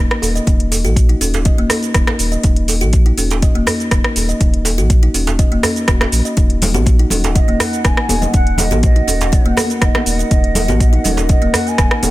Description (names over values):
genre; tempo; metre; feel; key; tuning
afro house; 122 BPM; 4/4; straight; Eb minor; A4 = 442 Hz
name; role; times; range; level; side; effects
kalimba; arpeggios; 0.0-12.0 s; Bb3 to Eb5; -21 LUFS; left 1 dB; sidechain pumping, ping-pong delay
warm sub bass; bass; 0.0-12.1 s; Eb1 to Bb1; -17 LUFS; equal; sidechain pumping
afro-pop drum kit; drums; 0.1-12.1 s; hi-hat, rim click, shaker; -19 LUFS; right 1 dB; none
djembe; percussion; 0.2-12.1 s; none; -24 LUFS; right 3 dB; none
electronic kick drum; drums; 0.5-11.9 s; none; -14 LUFS; equal; none
dark analog pad; sustained chords; 6.7-12.1 s; Eb4 to Gb5; -27 LUFS; right 1 dB; chorus, sidechain pumping
congas; percussion; 6.6-12.1 s; none; -21 LUFS; left 2 dB; none
bansuri; melody; 7.4-12.1 s; Db5 to Ab5; -23 LUFS; right 3 dB; ping-pong delay
room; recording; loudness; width
small room ambience; none; -12 LUFS; side -17 dB against mid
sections
0.0-12.1 A section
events
none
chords
0.0 Ebm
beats
| 0.47 0.96 1.46 1.95 | 2.44 2.93 3.42 3.92 | 4.41 4.90 5.39 5.88 | 6.38 6.87 7.36 7.85 | 8.34 8.83 9.33 9.82 | 10.31 10.80 11.29 11.79